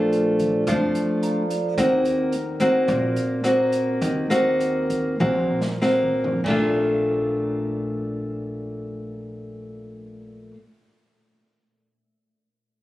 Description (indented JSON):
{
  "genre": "bossa nova",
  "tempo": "93-109 BPM",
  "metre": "4/4",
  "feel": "straight",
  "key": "Bb major",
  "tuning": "A4 = 440 Hz",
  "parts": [
    { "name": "nylon-string guitar", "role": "accompaniment", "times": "0.0-10.6 s", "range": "Bb2 to Gb4", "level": "-21 LUFS", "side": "equal", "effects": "none" },
    { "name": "vibraphone with soft mallets", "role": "accompaniment", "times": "0.0-1.8 s", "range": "F4 to Bb5", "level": "-26 LUFS", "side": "right 3 dB", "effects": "none" },
    { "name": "upright bass", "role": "bass", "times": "0.0-10.5 s", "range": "Bb1 to F2", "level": "-33 LUFS", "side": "equal", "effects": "none" },
    { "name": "open jazz drum kit", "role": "drums", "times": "0.1-6.6 s", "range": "crash cymbal, hi-hat, kick drum, rim click, snare drum, toms", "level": "-31 LUFS", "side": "right 1 dB", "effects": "none" }
  ],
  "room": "light reverb",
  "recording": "recorded on a phone in the room, club reverb",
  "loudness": "-20 LUFS",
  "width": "side -15 dB against mid",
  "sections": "0.0-6.5 A section; 6.5-9.0 B section",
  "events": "vibraphone fill 0.9-1.8; slowing down 1.8-6.5; drum fill 5.2-6.5",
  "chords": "0.0 Bbmaj7; 1.8 Ebm6; 6.5 Bbmaj7",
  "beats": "0.12 0.67 1.22 | 1.77 2.32 2.88 3.44 | 4.01 4.60 5.20 5.81 | 6.45 7.10 7.75 8.39"
}